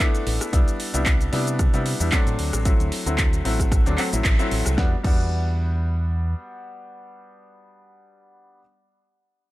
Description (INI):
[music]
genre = nu-disco, nu disco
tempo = 113 BPM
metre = 4/4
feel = swing 54% on 16ths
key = E minor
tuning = A4 = 440 Hz
[part]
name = clear grand piano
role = accompaniment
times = 0.0-8.6 s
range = F#3 to F#4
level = -27 LUFS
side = left 2 dB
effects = analog delay
[part]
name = electronic kick drum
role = drums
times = 0.0-5.2 s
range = none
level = -20 LUFS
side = equal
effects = overdrive
[part]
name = pop drum kit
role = drums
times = 0.0-5.2 s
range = crash cymbal, handclaps, hi-hat, rim click, shaker, snare drum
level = -27 LUFS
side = equal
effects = overdrive
[part]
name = fingered electric bass with an envelope filter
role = bass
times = 0.3-6.3 s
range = A1 to C3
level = -24 LUFS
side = equal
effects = sidechain pumping
[sound]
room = digital ambience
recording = none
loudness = -19 LUFS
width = side -17 dB against mid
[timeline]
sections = 0.0-4.8 A section; 4.8-9.0 B section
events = drop 0.0-4.8; band accent 4.2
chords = 0.0 Dsus2/A; 0.5 Cmaj7; 2.4 D7; 4.8 Em7